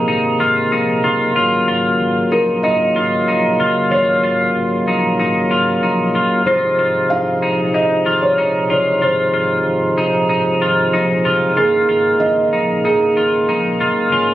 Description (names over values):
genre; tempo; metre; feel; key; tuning
dream pop; 94 BPM; 4/4; straight; unclear; A4 = 443 Hz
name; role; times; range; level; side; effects
percussive tonewheel organ; sustained chords; 0.0-14.3 s; C3 to F4; -18 LUFS; equal; overdrive, stopped rotary speaker
clean electric guitar; arpeggios; 0.0-14.3 s; Eb4 to F4; -18 LUFS; left 1 dB; analog chorus, tape echo
vintage muted fingered electric bass; bass; 0.0-14.3 s; Gb1 to Bb1; -28 LUFS; left 1 dB; none
felt-muted upright piano; melody; 2.3-14.3 s; Ab4 to F5; -18 LUFS; right 1 dB; tape echo
room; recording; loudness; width
moderate huge ambient reverb, RT60 5.0 s; recorded on a phone in the room, club reverb, compression; -13 LUFS; side -14 dB against mid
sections
0.0-14.3 A section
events
none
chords
0.0 Ab69; 1.4 Gbmaj7; 6.5 Fm7; 11.6 Eb7sus4